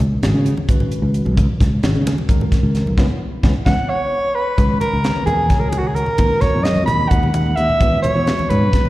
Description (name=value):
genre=electric jazz fusion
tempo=261 BPM (eighths)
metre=7/8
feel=straight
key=C# dorian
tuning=A4 = 440 Hz
part: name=fretless electric bass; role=bass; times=0.0-8.9 s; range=G#1 to C#3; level=-18 LUFS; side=equal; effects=none
part: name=tight funk drum kit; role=drums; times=0.0-8.8 s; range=hi-hat, kick drum, snare drum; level=-18 LUFS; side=equal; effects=none
part: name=congas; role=percussion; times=0.0-8.9 s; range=none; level=-24 LUFS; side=equal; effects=none
part: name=tine electric piano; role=accompaniment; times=0.2-8.9 s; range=D#3 to C#5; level=-25 LUFS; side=left 1 dB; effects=wide subtle chorus, slapback echo
part: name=warm soprano saxophone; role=melody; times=3.7-8.9 s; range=F#4 to B5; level=-18 LUFS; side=right 1 dB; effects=slapback echo, tape echo
room=light reverb, studio reverb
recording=live gig heard through the venue's PA, recital hall reverb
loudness=-14 LUFS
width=side -17 dB against mid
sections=0.0-4.6 A section; 4.6-8.9 B section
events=band accent 3.0-4.6; drum fill 3.9-4.6; tine electric piano fill 3.9-4.6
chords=0.0 C#9sus4; 4.6 C#m9; 6.2 Bmaj9/D#; 7.8 E6